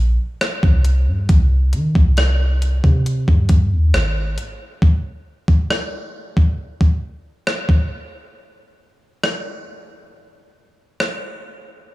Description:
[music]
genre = contemporary R&B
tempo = 68 BPM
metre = 4/4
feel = straight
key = unclear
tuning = A4 = 439 Hz
[part]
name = soft 808-style bass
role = bass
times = 0.0-4.4 s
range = Ab1 to Eb3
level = -15 LUFS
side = equal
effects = none
[part]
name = crisp 8-bit digital drum machine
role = drums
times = 0.4-11.2 s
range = hi-hat, kick drum, rim click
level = -17 LUFS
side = equal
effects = overdrive
[sound]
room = little or no reverb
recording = studio reverb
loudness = -15 LUFS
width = side -18 dB against mid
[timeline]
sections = 0.0-11.9 A section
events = none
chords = none

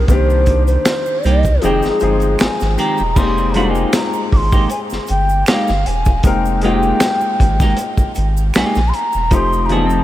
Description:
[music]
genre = R&B, neo-soul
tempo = 78 BPM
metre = 4/4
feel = swing 54% on 16ths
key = F dorian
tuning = A4 = 440 Hz
[part]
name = mellow bansuri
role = melody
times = 0.0-10.0 s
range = Ab4 to D6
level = -19 LUFS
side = left 1 dB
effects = diffuse ambient delay
[part]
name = clear baby grand piano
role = accompaniment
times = 0.0-10.0 s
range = Eb3 to G5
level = -21 LUFS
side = left 5 dB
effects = lush chorus
[part]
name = round analog bass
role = bass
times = 0.0-10.0 s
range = E1 to C2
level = -17 LUFS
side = equal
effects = none
[part]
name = crunchy breakbeat drum kit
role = drums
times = 0.1-9.9 s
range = crash cymbal, finger snaps, hi-hat, kick drum, snare drum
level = -18 LUFS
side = equal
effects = none
[part]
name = egg shaker and finger snaps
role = percussion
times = 0.1-10.0 s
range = none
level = -32 LUFS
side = right 6 dB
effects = none
[part]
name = clean electric guitar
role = second line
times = 1.2-10.0 s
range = Eb3 to A4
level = -22 LUFS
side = right 2 dB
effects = wide subtle chorus
[sound]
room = light reverb, small room ambience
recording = none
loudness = -13 LUFS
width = side -14 dB against mid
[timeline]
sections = 0.0-3.2 A section; 3.2-10.0 B section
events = kick muted 1.6-3.2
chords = 0.1 Cm7; 1.6 Fm9; 3.2 Fm11; 9.3 F7

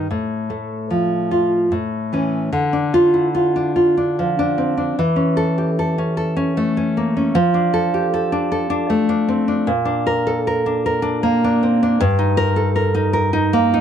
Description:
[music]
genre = romantic piece for solo classical guitar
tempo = 76 BPM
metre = 3/4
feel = rubato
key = D minor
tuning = A4 = 440 Hz
[part]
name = nylon-string guitar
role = solo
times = 0.0-13.8 s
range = G2 to Bb4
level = -16 LUFS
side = equal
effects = none
[sound]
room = light reverb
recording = dark, warm production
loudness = -16 LUFS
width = side -9 dB against mid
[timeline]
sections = 0.0-2.5 A section; 2.5-13.8 B section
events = none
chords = 0.1 F/A; 1.7 A; 2.5 Dm; 5.0 A7/E; 7.3 Dm/F; 9.7 Bb; 12.0 Eb/G

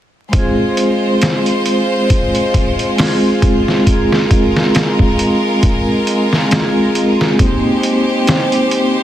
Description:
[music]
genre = trip hop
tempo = 68 BPM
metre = 4/4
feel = swing 56% on 16ths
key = F minor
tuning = A4 = 441 Hz
[part]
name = vibraphone with medium mallets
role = accompaniment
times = 0.3-9.0 s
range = Ab3 to Ab4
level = -14 LUFS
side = equal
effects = harmonic tremolo, low-pass filter, tape echo
[part]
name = bright studio violin section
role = sustained chords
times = 0.3-9.0 s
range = Ab3 to C5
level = -18 LUFS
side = equal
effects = none
[part]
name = trip hop sampler-style drum kit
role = drums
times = 0.3-8.9 s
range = hi-hat, kick drum, snare drum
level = -15 LUFS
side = equal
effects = vintage 12-bit sampler grit
[sound]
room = light reverb, small room reverb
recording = dense, heavily limited modern master, vinyl crackle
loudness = -11 LUFS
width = side -12 dB against mid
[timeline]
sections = 0.3-9.0 A section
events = none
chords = 0.3 Fm; 7.4 Abmaj7

